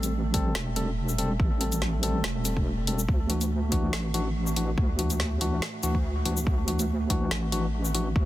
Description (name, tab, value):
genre	deep dubstep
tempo	142 BPM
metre	4/4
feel	swing 54% on 16ths, half-time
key	unclear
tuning	A4 = 442 Hz
part	dark analog pad	sustained chords	0.0-8.3 s	A3	-35 LUFS	right 3 dB	lush chorus
part	tine electric piano	stabs	0.0-8.1 s	E3 to A4	-32 LUFS	left 2 dB	medium tremolo, dub echo
part	deep soft wobble bass	bass	0.0-8.3 s	E1 to D2	-28 LUFS	equal	chorus
part	deep house drum kit	drums	0.0-8.0 s	hi-hat, shaker, snare drum	-33 LUFS	left 1 dB	studio reverb
part	electronic kick drum	drums	0.3-8.2 s	none	-26 LUFS	equal	studio reverb
room	little or no reverb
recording	dense, heavily limited modern master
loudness	-24 LUFS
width	side -15 dB against mid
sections	0.0-8.3 A section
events	none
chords	0.0 Am7; 3.1 Dadd9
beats	0.13 0.55 0.97 | 1.40 1.82 2.24 2.66 | 3.09 3.51 3.93 4.35 | 4.78 5.20 5.62 6.04 | 6.47 6.89 7.31 7.74 | 8.16